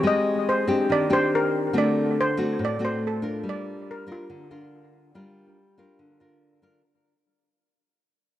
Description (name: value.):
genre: bossa nova.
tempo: 141 BPM.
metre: 4/4.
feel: straight.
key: G minor.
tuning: A4 = 439 Hz.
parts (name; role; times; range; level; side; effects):
steel pan; melody; 0.0-6.4 s; F4 to Eb5; -26 LUFS; equal; analog delay.
nylon-string guitar; accompaniment; 0.0-6.8 s; A2 to Bb4; -24 LUFS; left 1 dB; analog delay.
room: moderate plate reverb, RT60 3.5 s.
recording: echo-heavy mix, cassette tape.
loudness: -21 LUFS.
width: side -13 dB against mid.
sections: 0.0-6.8 A section.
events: fade-out 0.0-6.8.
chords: 0.0 Abmaj9#11; 1.7 D7; 3.4 Gm7.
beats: | 0.04 0.46 0.89 1.31 | 1.74 2.16 2.59 3.01 | 3.44 3.87 4.29 4.71 | 5.14 5.57 5.99 6.42.